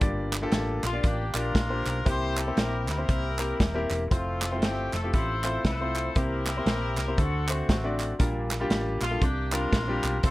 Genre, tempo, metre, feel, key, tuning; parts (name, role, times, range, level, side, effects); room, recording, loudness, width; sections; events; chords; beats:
uptempo gospel; 117 BPM; 4/4; swing 61% on 8ths; A4 = 441 Hz
clear concert grand piano; accompaniment; 0.0-10.3 s; G2 to D5; -31 LUFS; left 1 dB
hollow-body short-scale fingered electric bass; bass; 0.0-10.3 s; Eb1 to D2; -31 LUFS; equal
warm soul drum kit; drums; 0.0-10.3 s; hi-hat, kick drum, snare drum; -26 LUFS; equal
group handclap; percussion; 0.3-10.1 s; -33 LUFS; right 3 dB
warm horn section; melody; 0.9-10.3 s; A3 to C5; -32 LUFS; left 2 dB
little or no reverb; -24 LUFS; side -18 dB against mid
0.0-10.3 A section
0.0 Gm7; 2.1 C7; 4.1 Fmaj7; 6.2 C7; 7.2 D7; 8.2 Gm7/Bb; 9.2 C9sus4
| 0.02 0.53 1.04 1.55 | 2.06 2.58 3.09 3.60 | 4.11 4.62 5.13 5.64 | 6.16 6.67 7.18 7.69 | 8.20 8.71 9.22 9.73 | 10.24